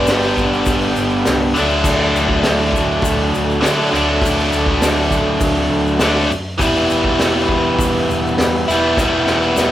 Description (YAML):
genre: garage rock duo or trio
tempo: 101 BPM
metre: 4/4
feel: straight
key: unclear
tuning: A4 = 438 Hz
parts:
  - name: overdriven combo organ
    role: sustained chords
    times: 0.0-9.7 s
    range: F#4 to E5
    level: -24 LUFS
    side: left 1 dB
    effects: none
  - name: biting overdriven guitar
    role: riff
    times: 0.0-9.7 s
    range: G2 to E4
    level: -15 LUFS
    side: equal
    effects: none
  - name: hollow-body short-scale picked electric bass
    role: bass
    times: 0.0-9.7 s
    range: E1 to D3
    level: -24 LUFS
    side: equal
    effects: overdrive
  - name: vintage drum kit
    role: drums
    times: 0.1-9.7 s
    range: crash cymbal, hi-hat, kick drum, snare drum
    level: -20 LUFS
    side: equal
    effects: none
  - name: egg shaker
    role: percussion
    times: 0.1-9.7 s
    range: none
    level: -31 LUFS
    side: left 5 dB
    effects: none
room: moderate large studio reverb, RT60 0.9 s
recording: band playing live in one room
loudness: -13 LUFS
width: side -12 dB against mid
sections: 0.0-9.7 A section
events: drum fill 9.0-9.7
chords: 0.0 G; 1.6 D; 6.6 Em